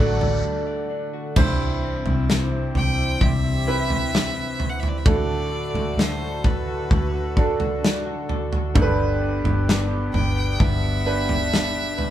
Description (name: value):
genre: pop ballad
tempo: 65 BPM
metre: 4/4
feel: straight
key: unclear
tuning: A4 = 440 Hz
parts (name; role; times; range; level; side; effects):
- clear violin; melody; 0.0-12.1 s; B4 to G5; -28 LUFS; equal; none
- bright upright piano; accompaniment; 0.0-12.1 s; G2 to D5; -27 LUFS; right 2 dB; none
- chorused pulse-width pad; sustained chords; 0.0-12.1 s; C3 to F#5; -30 LUFS; equal; none
- direct-recorded clean electric guitar; arpeggios; 0.0-12.1 s; C3 to D5; -34 LUFS; left 7 dB; spring reverb
- vintage muted fingered electric bass; bass; 0.0-12.1 s; G1 to D2; -25 LUFS; equal; none
- modern studio drum kit; drums; 0.2-12.1 s; crash cymbal, kick drum, snare drum, toms; -22 LUFS; equal; none
room: moderate studio reverb, RT60 0.5 s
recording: band playing live in one room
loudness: -20 LUFS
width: side -12 dB against mid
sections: 0.0-1.4 A section; 1.4-12.1 B section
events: break 0.4-1.4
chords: 0.0 D; 1.4 C; 5.1 D; 8.8 G